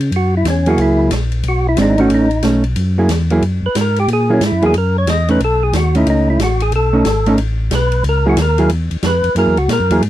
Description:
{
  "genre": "soul jazz organ trio",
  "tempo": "182 BPM",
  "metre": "4/4",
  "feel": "swing 64% on 8ths",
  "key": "F# mixolydian",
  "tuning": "A4 = 440 Hz",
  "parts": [
    { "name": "mellow tonewheel organ", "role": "bass", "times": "0.0-10.1 s", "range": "G#1 to C#3", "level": "-16 LUFS", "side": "equal", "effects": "overdrive, chorus vibrato, slow rotary speaker" },
    { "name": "swinging big-band drum kit", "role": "drums", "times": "0.0-10.1 s", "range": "hi-hat, ride cymbal, snare drum", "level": "-24 LUFS", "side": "equal", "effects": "none" },
    { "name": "percussive tonewheel organ", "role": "melody", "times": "0.2-10.0 s", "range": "C#4 to D#5", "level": "-17 LUFS", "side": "equal", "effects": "slow rotary speaker, overdrive" },
    { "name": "hollow-body jazz guitar", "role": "accompaniment", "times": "0.7-10.0 s", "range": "F#3 to G#4", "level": "-14 LUFS", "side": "right 2 dB", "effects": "none" }
  ],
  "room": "light reverb",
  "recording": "dry, close 1970s-style studio recording",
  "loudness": "-12 LUFS",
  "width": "side -13 dB against mid",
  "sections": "0.1-10.1 A section",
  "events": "tonewheel organ solo 0.1-10.1",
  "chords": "0.1 F#9; 1.4 B9; 2.8 F#9; 5.4 B9; 8.0 F#9"
}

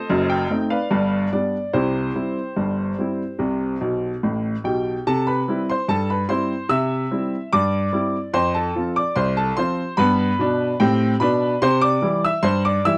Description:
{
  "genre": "ragtime piano",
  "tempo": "73 BPM",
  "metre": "2/4",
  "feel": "straight",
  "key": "C major",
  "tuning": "A4 = 440 Hz",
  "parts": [
    { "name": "clear grand piano", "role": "solo", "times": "0.0-13.0 s", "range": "F#1 to E6", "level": "-21 LUFS", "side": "equal", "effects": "none" }
  ],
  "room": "light reverb",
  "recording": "dry, close 1970s-style studio recording",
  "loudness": "-21 LUFS",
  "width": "mono",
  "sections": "0.0-5.1 A section; 5.1-13.0 B section",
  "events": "grand piano fill 3.8-5.1",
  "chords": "0.1 F#dim7; 0.9 G7; 1.7 C; 8.3 F; 10.0 G; 11.6 C"
}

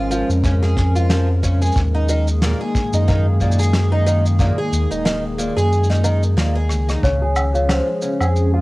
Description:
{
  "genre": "folktronica",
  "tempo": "91 BPM",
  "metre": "4/4",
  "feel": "swing 56% on 16ths",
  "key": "Db major",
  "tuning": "A4 = 439 Hz",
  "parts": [
    { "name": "warbly tape-like pad", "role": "sustained chords", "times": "0.0-8.6 s", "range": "Eb3 to Bb4", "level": "-24 LUFS", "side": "equal", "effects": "chorus, built-in reverb, cassette tape" },
    { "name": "picked twelve-string acoustic guitar", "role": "arpeggios", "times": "0.0-8.6 s", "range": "Bb2 to Ab4", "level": "-23 LUFS", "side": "right 1 dB", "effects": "lush chorus, low-pass filter, cassette tape, analog delay" },
    { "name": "warm sub bass", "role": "bass", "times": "0.0-8.6 s", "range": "Eb1 to Gb2", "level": "-17 LUFS", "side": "equal", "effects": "none" },
    { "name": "shaker, snare drum, rim click and woodblock", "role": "drums", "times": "0.1-8.5 s", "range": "none", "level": "-25 LUFS", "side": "equal", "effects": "cassette tape" },
    { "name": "kick drum", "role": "drums", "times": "0.4-7.2 s", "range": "none", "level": "-22 LUFS", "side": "equal", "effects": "cassette tape" },
    { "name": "worn celesta", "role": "second line", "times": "7.0-8.6 s", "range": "C5 to Db5", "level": "-22 LUFS", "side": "left 2 dB", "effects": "cassette tape, analog delay" }
  ],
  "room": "small room ambience",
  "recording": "home recording on cassette",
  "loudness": "-15 LUFS",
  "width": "side -20 dB against mid",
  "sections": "0.0-7.0 A section; 7.0-8.6 A section",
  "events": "kick drops out 5.7-7.0; drum fill 6.7-7.0; filter sweep on twelve-string acoustic guitar 7.0-8.6",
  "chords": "0.0 Db; 1.8 Absus2/Eb; 7.0 Db"
}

